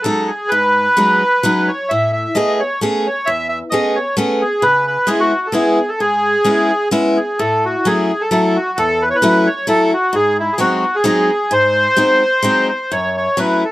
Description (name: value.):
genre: musette waltz.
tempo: 131 BPM.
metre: 3/4.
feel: swing 53% on 8ths, rubato.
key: unclear.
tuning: A4 = 440 Hz.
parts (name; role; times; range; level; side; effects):
bandoneon; melody; 0.0-13.7 s; E4 to E5; -14 LUFS; equal; none.
picked steel-string acoustic guitar; accompaniment; 0.0-13.6 s; E2 to G#4; -17 LUFS; left 1 dB; none.
room: light reverb.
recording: close, detailed microphones.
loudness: -13 LUFS.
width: side -16 dB against mid.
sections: 0.0-13.7 A section.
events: none.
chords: 0.0 G#7sus4; 1.9 Amaj9; 4.6 C#m7; 7.4 A6; 10.1 G#7; 12.9 F#m7.